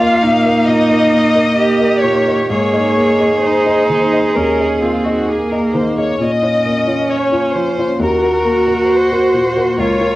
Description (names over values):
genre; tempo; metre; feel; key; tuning
neoclassical piano and strings; 66 BPM; 4/4; rubato; unclear; A4 = 440 Hz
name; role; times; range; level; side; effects
rich chamber violin section; melody; 0.0-10.2 s; F4 to F5; -17 LUFS; left 2 dB; cassette tape
rich cello; second line; 0.0-10.2 s; Eb4 to Ab4; -16 LUFS; right 2 dB; none
dark baby grand piano; accompaniment; 0.0-10.2 s; Db2 to Eb5; -19 LUFS; left 2 dB; none
rich viola; accompaniment; 0.0-10.2 s; Bb3 to Bb4; -19 LUFS; right 1 dB; none
dark analog pad; sustained chords; 0.1-10.2 s; Bb3 to F5; -23 LUFS; right 1 dB; chorus, phaser
room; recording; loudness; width
light reverb, small room ambience; home recording on cassette; -12 LUFS; side -17 dB against mid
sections
0.0-10.2 A section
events
none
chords
0.0 Eb; 2.5 Abadd9; 6.2 Bbm; 8.0 Ebm